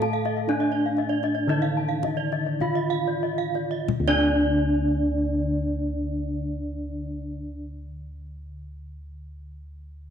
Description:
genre	Balinese gamelan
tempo	44-66 BPM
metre	4/4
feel	straight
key	unclear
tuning	A4 = 440 Hz
part	gamelan-type bronze metallophone	melody	0.0-7.6 s	D4 to A4	-26 LUFS	right 1 dB	slapback echo
part	gamelan-type bronze metallophone	accompaniment	0.0-7.6 s	D3 to A3	-35 LUFS	left 10 dB	none
part	gamelan-type bronze metallophone	arpeggios	0.0-7.7 s	D5 to A5	-32 LUFS	left 10 dB	none
part	gamelan-type bossed gongs	bass	0.0-7.6 s	D2 to A4	-30 LUFS	equal	none
part	kendang	percussion	0.0-4.5 s	none	-30 LUFS	left 7 dB	none
part	gamelan-type bronze metallophone	arpeggios	0.1-7.6 s	D5 to F5	-32 LUFS	right 10 dB	none
room	wet echo chamber reverb, RT60 2.0 s, small room ambience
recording	1960s-style stereo with parts hard left and right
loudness	-22 LUFS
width	side -8 dB against mid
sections	0.0-3.9 A section; 3.9-9.3 B section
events	slowing down 0.0-3.9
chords	none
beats	0.48 1.48 2.61 | 3.88 5.25 6.61

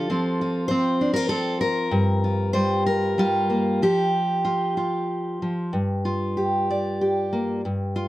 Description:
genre	folk, solo fingerstyle acoustic guitar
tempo	96 BPM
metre	3/4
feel	rubato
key	G minor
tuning	A4 = 440 Hz
part	fingerpicked steel-string acoustic guitar	solo	0.0-8.1 s	G2 to D5	-21 LUFS	equal	none
room	light reverb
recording	close, detailed microphones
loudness	-21 LUFS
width	side -16 dB against mid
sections	0.0-5.7 A section; 5.7-8.1 B section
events	none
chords	0.1 F; 1.9 Gm7; 3.8 N.C.; 5.7 G7(no3)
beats	| 0.10 0.71 1.32 | 1.94 2.56 3.19 | 3.81 4.44 5.09 | 5.73 6.37 7.01 | 7.64

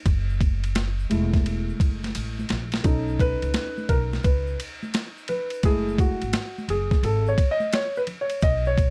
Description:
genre	hip hop, jazz-hop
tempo	86 BPM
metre	4/4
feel	swing 66% on 16ths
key	F# dorian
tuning	A4 = 440 Hz
part	upright bass	bass	0.1-8.9 s	E1 to C#2	-29 LUFS	equal	none
part	boom bap sampler-style drum kit	drums	0.1-8.9 s	hi-hat, kick drum, ride cymbal, snare drum	-27 LUFS	equal	none
part	tube shaker and congas	percussion	0.1-8.9 s	none	-41 LUFS	equal	none
part	dark concert grand piano	accompaniment	1.1-8.9 s	G#3 to D#5	-29 LUFS	equal	none
room	little or no reverb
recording	dark, warm production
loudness	-24 LUFS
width	mono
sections	0.0-2.8 A section; 2.8-8.9 B section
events	grand piano solo 0.0-2.8, 2.8-8.9; drum fill 2.1-2.8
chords	0.1 F#m9; 2.8 B7; 5.6 F#m9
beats	| 0.06 0.75 1.45 2.15 | 2.85 3.54 4.24 4.94 | 5.64 6.33 7.03 7.73 | 8.43

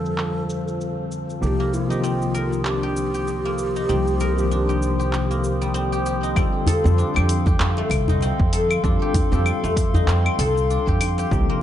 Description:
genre	organic downtempo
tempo	97 BPM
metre	4/4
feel	swing 58% on 16ths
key	unclear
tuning	A4 = 439 Hz
part	breathy mellow low ney	melody	0.0-5.8 s	F4 to A4	-29 LUFS	equal	tape echo
part	tine electric piano	accompaniment	0.0-11.6 s	C3 to C5	-27 LUFS	left 2 dB	medium stereo tremolo, sidechain pumping, low-pass filter, tape echo
part	warbly tape-like pad	sustained chords	0.0-11.6 s	F4 to Eb6	-29 LUFS	left 2 dB	chorus, built-in reverb, sidechain pumping
part	upright bass	bass	0.0-11.4 s	C2 to F2	-23 LUFS	right 1 dB	sidechain pumping
part	deep house drum kit	drums	0.1-11.5 s	claves, handclaps, hi-hat, shaker	-30 LUFS	left 1 dB	overdrive, low-pass filter on perc, small room reverb, low-pass filter on snare, low-pass filter on hats
part	guzheng	arpeggios	1.6-11.6 s	G3 to Bb4	-26 LUFS	left 1 dB	vintage 12-bit sampler grit, tape echo
part	electronic kick drum	drums	6.4-11.5 s	none	-22 LUFS	equal	overdrive, small room reverb
part	djembe	percussion	6.7-11.3 s	none	-24 LUFS	equal	none
room	small room ambience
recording	dark, warm production, nothing above 10.9 kHz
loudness	-19 LUFS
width	side -11 dB against mid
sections	0.0-6.4 A section; 6.4-11.6 B section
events	filter sweep on tine electric piano 0.0-6.4; filter sweep on ambient pad 0.0-6.4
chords	0.0 F; 1.4 Cm; 6.4 F7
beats	0.18 0.80 | 1.42 2.04 2.65 3.27 | 3.89 4.51 5.13 5.75 | 6.37 6.98 7.60 8.22 | 8.84 9.46 10.08 10.70 | 11.31

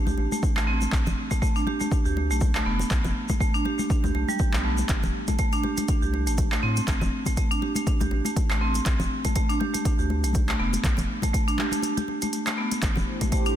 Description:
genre	afro house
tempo	121 BPM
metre	4/4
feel	swing 56% on 16ths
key	unclear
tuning	A4 = 440 Hz
part	marimba with hard mallets	arpeggios	0.1-13.6 s	G3 to G4	-27 LUFS	right 1 dB	sidechain pumping, tape echo
part	round analog bass	bass	0.1-13.0 s	E1 to A2	-27 LUFS	equal	sidechain pumping
part	congas	percussion	0.1-13.3 s	none	-34 LUFS	left 4 dB	none
part	tube shaker	percussion	0.1-13.5 s	none	-40 LUFS	left 3 dB	none
part	electronic kick drum	drums	0.4-13.4 s	none	-25 LUFS	equal	none
part	deep house drum kit	drums	0.6-13.5 s	handclaps, hi-hat	-32 LUFS	equal	none
part	warm analog pad	sustained chords	12.8-13.6 s	A3 to C5	-31 LUFS	right 3 dB	chorus, sidechain pumping
room	light reverb, digital ambience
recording	dense, heavily limited modern master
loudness	-22 LUFS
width	side -11 dB against mid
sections	0.0-13.6 A section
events	break 11.8-12.8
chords	0.0 Am; 0.9 Bdim; 4.9 Am; 8.9 Bdim; 12.8 Am7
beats	0.43 | 0.93 1.42 1.92 2.41 | 2.91 3.41 3.90 4.40 | 4.89 5.39 5.88 6.38 | 6.88 7.37 7.87 8.37 | 8.86 9.36 9.85 10.35 | 10.84 11.34 11.84 12.33 | 12.83 13.32

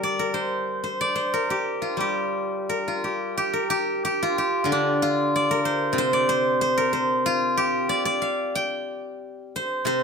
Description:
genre	chinese traditional, Chinese solo plucked strings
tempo	92 BPM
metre	2/4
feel	rubato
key	G yu mode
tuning	A4 = 436 Hz
part	steel-string zither	solo	0.0-10.0 s	C3 to G5	-22 LUFS	equal	none
room	light reverb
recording	close, detailed microphones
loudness	-22 LUFS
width	side -5 dB against mid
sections	0.0-3.4 A section; 3.4-10.0 B section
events	none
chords	none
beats	0.05 | 0.69 1.34 | 2.00 2.68 | 3.35 4.02 | 4.68 5.33 | 5.97 6.60 | 7.24 7.89 | 8.56 9.23 | 9.87

